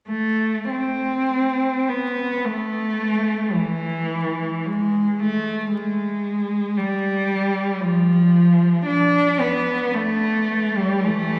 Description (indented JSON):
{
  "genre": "classical, free, expressive piece for unaccompanied cello",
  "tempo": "48-59 BPM",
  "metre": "4/4",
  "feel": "rubato",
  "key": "A minor",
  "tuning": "A4 = 439 Hz",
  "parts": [
    { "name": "warm cello", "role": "solo", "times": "0.1-11.4 s", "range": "E3 to D4", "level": "-21 LUFS", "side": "equal", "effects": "none" }
  ],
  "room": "wet church reverb, RT60 3.5 s",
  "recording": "vinyl crackle",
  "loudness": "-21 LUFS",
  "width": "mono",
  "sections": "0.1-11.4 A section",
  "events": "none",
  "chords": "none"
}